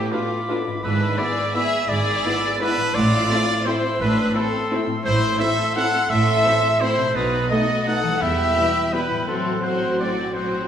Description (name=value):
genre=classical, orchestral ballroom waltz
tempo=170 BPM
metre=3/4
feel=uneven beats, rubato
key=A minor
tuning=A4 = 440 Hz
part: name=rich symphonic violin section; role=melody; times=0.0-10.7 s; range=A3 to A4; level=-30 LUFS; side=left 4 dB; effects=none
part: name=bright clarinet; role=second line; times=0.0-10.7 s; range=F4 to F#5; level=-29 LUFS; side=left 2 dB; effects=none
part: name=clear oboe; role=second line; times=0.0-10.7 s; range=F#5 to C6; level=-33 LUFS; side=equal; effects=none
part: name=silver concert flute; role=second line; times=0.0-10.7 s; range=B5 to E6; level=-32 LUFS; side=left 2 dB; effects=none
part: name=warm symphonic violin section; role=second line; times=0.0-10.7 s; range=F4 to F#5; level=-29 LUFS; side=left 2 dB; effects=none
part: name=concert harp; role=arpeggios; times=0.0-10.7 s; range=G#2 to D5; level=-32 LUFS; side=left 6 dB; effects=none
part: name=warm trumpet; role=stabs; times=0.0-10.7 s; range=F4 to F#5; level=-24 LUFS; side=right 3 dB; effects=none
part: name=clear symphonic double bass section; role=bass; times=0.0-10.7 s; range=E1 to B1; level=-29 LUFS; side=right 2 dB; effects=none
part: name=rich symphonic cello section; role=bass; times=0.0-10.7 s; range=E2 to B2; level=-27 LUFS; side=right 2 dB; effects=none
part: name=rich symphonic viola section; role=accompaniment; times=0.1-10.7 s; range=F#3 to F4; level=-30 LUFS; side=equal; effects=none
part: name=mellow French horn section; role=sustained chords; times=0.1-10.1 s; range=B3 to F#4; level=-32 LUFS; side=left 3 dB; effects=none
part: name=warm trombone section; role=sustained chords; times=0.1-10.1 s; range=G#2 to B3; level=-32 LUFS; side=right 2 dB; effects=none
room=wet recital hall reverb, RT60 1.6 s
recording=recorded in a church or concert hall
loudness=-18 LUFS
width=side -9 dB against mid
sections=0.0-10.7 A section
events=none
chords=0.0 Bm7b5/A; 0.8 E7/G#; 2.9 Am; 7.2 B7; 8.2 Em; 9.3 F#dim/A